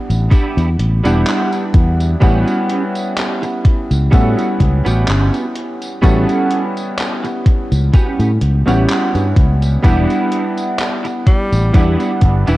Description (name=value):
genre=vaporwave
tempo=63 BPM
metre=4/4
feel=swing 54% on 16ths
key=unclear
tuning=A4 = 440 Hz
part: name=clear electric grand piano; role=accompaniment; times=0.0-12.6 s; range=G3 to F#5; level=-18 LUFS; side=equal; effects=wide subtle chorus, tape echo
part: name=fingered electric bass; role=bass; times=0.1-12.6 s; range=E1 to A2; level=-14 LUFS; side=equal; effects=none
part: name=detuned 8-bit digital drum machine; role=drums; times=0.1-12.6 s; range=handclaps, hi-hat, tambourine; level=-26 LUFS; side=equal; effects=gated reverb
part: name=clean electric guitar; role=riff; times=0.3-12.6 s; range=B3 to A4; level=-23 LUFS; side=right 2 dB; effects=ensemble chorus, tape echo
part: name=electronic kick drum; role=drums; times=0.3-12.4 s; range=none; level=-11 LUFS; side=equal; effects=overdrive
part: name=bright tenor saxophone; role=melody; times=11.3-12.6 s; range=E3 to G3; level=-22 LUFS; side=equal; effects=tape echo
room=light reverb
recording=cassette tape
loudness=-12 LUFS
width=side -17 dB against mid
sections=0.0-12.6 A section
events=none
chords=0.0 Em7; 2.2 A13; 9.8 Em7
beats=0.32 1.27 | 2.22 3.17 4.12 5.08 | 6.03 6.98 7.93 8.89 | 9.84 10.79 11.74